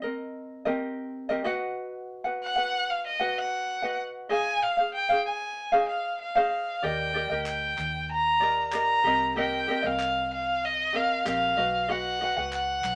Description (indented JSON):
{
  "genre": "acoustic pop",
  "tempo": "95 BPM",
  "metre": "4/4",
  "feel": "straight",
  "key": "unclear",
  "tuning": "A4 = 439 Hz",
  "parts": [
    { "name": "ukulele", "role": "accompaniment", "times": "0.0-13.0 s", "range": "C4 to F#5", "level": "-31 LUFS", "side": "equal", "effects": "none" },
    { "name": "warm violin", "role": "melody", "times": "2.4-13.0 s", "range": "D#5 to Bb5", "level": "-29 LUFS", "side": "equal", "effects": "none" },
    { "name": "vintage muted fingered electric bass", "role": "bass", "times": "6.8-13.0 s", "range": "Bb1 to Eb2", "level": "-42 LUFS", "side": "equal", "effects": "none" },
    { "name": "group handclap", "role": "percussion", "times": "7.5-13.0 s", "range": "none", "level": "-42 LUFS", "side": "equal", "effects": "none" }
  ],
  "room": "moderate studio reverb, RT60 0.5 s",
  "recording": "none",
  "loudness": "-27 LUFS",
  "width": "mono",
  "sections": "0.0-6.8 A section; 6.8-13.0 B section",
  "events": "none",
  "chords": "0.0 Cm7; 1.5 B; 4.3 Ab6; 6.8 Ebmaj7; 9.1 Cm7; 11.6 B",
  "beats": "0.50 1.14 | 1.77 2.40 3.04 3.67 | 4.30 4.94 5.57 6.20 | 6.84 7.47 8.10 8.73 | 9.37 10.00 10.63 11.26 | 11.90 12.53"
}